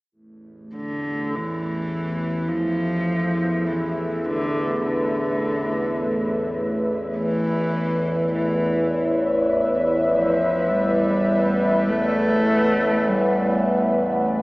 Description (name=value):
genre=dark ambient drone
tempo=free time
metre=none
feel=none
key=unclear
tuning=A4 = 439 Hz
part: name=dark analog pad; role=sustained chords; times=0.7-14.4 s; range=A3 to E5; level=-24 LUFS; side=equal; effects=chorus
part: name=overtone-sweeping drone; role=drone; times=0.8-14.4 s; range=A1 to E2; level=-24 LUFS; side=equal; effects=chorus, built-in reverb
part: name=dark cello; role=melody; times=0.8-14.0 s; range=D3 to A3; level=-24 LUFS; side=equal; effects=dub echo
room=wet spring reverb, RT60 2.2 s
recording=echo-heavy mix, cassette tape, small speaker sound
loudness=-19 LUFS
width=side -22 dB against mid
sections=0.1-14.4 A section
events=none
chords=0.1 Asus2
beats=free time